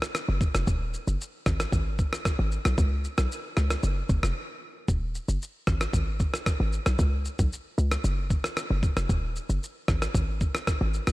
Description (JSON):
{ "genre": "afrobeats", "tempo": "114 BPM", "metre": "4/4", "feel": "straight", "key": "Eb minor", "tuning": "A4 = 441 Hz", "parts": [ { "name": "dusty soul sampler-style drum kit", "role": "drums", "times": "0.0-11.1 s", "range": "kick drum, rim click, shaker", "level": "-28 LUFS", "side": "equal", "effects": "none" }, { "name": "short 808-style bass", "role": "bass", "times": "0.3-11.1 s", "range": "Eb1 to C#2", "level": "-26 LUFS", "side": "equal", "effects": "none" } ], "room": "digital ambience", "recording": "none", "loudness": "-25 LUFS", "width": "side -19 dB against mid", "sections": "0.0-4.9 A section; 4.9-11.1 B section", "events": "break 4.4-4.9", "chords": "none" }